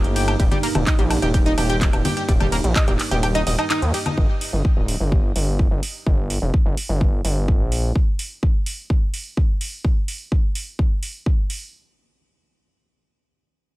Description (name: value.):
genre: melodic techno.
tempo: 127 BPM.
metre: 4/4.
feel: straight.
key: unclear.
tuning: A4 = 440 Hz.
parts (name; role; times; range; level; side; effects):
dark analog pad; sustained chords; 0.0-4.1 s; Bb3 to G4; -28 LUFS; right 3 dB; lush chorus, sidechain pumping.
gritty driven synth bass; bass; 0.0-7.9 s; D1 to Eb2; -22 LUFS; equal; sidechain pumping.
analog drone; drone; 0.4-4.2 s; G2; -35 LUFS; equal; none.
house drum kit; drums; 0.0-11.6 s; congas, handclaps, hi-hat, ride cymbal, woodblock; -27 LUFS; equal; none.
tight sequenced synth; arpeggios; 0.2-4.0 s; G3 to Eb6; -25 LUFS; equal; chorus, sidechain pumping, digital delay.
electronic kick drum; drums; 0.4-11.4 s; none; -19 LUFS; equal; none.
room: little or no reverb.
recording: none.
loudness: -18 LUFS.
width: side -18 dB against mid.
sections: 0.0-4.2 A section; 4.2-11.7 B section.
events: drop 0.0-4.2; kick drops out 3.2-4.2.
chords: 0.0 Eb; 4.2 N.C..